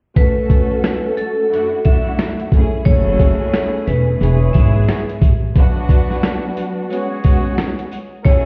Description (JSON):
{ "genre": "hip hop, boom-bap hip-hop", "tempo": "89 BPM", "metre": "4/4", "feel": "swing 61% on 16ths", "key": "F# minor", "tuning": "A4 = 440 Hz", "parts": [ { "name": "vibraphone with hard mallets", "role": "melody", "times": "0.2-8.5 s", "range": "A4 to E5", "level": "-24 LUFS", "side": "equal", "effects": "high-pass filter, low-pass filter" }, { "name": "dark studio string section", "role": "accompaniment", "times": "0.2-8.5 s", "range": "F#2 to A4", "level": "-24 LUFS", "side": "equal", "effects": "cassette tape, high-pass filter, low-pass filter" }, { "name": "boom bap sampler-style drum kit", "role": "drums", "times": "0.2-8.4 s", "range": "hi-hat, kick drum, rim click, snare drum", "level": "-16 LUFS", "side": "equal", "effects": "none" }, { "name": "warm trumpet section", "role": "stabs", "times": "2.9-8.5 s", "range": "D4 to C#5", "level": "-32 LUFS", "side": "equal", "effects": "high-pass filter, low-pass filter, delay" }, { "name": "upright bass", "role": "bass", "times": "2.9-5.5 s", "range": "E1 to A1", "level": "-18 LUFS", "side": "equal", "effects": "none" }, { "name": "sleigh bells", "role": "percussion", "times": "2.9-8.4 s", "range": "none", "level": "-47 LUFS", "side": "equal", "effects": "none" } ], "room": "small room ambience", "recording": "heard muffled through a wall, stone room reverb, EQ", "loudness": "-16 LUFS", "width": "mono", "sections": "0.2-2.9 A section; 2.9-8.5 B section", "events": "none", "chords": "0.2 F#m; 1.5 Dadd9/F#; 2.5 F#m7; 4.2 E; 5.6 Bm; 6.9 C#7sus4" }